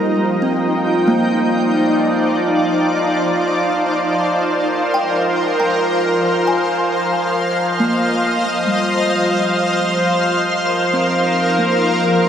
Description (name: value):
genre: ambient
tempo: 69 BPM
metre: 4/4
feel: straight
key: unclear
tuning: A4 = 441 Hz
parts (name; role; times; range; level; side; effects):
- shimmering ambient pad; sustained chords; 0.0-12.3 s; Eb4 to G5; -16 LUFS; equal; chorus, built-in reverb
- kalimba; arpeggios; 0.0-12.3 s; G3 to Bb5; -22 LUFS; right 1 dB; tape echo
- overtone-sweeping drone; drone; 0.0-12.3 s; F3 to F4; -21 LUFS; right 1 dB; chorus, built-in reverb, phaser
room: wet shimmer reverb, RT60 7.2 s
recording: none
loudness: -14 LUFS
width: side -8 dB against mid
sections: 0.0-12.3 A section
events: fade-out on kalimba 0.0-12.3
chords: 0.0 Ebmaj13; 6.4 Bb9sus4